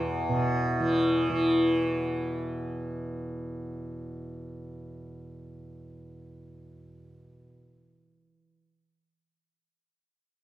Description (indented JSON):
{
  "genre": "indian classical",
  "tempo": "136 BPM",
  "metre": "4/4",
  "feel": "straight",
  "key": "unclear",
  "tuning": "A4 = 440 Hz",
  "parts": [
    { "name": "tanpura", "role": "drone", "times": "0.0-8.4 s", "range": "E2 to E3", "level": "-28 LUFS", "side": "equal", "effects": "none" }
  ],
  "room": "moderate recital hall reverb, RT60 1.4 s",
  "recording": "close, detailed microphones",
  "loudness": "-26 LUFS",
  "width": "side -14 dB against mid",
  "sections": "0.0-1.8 A section",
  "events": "none",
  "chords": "none"
}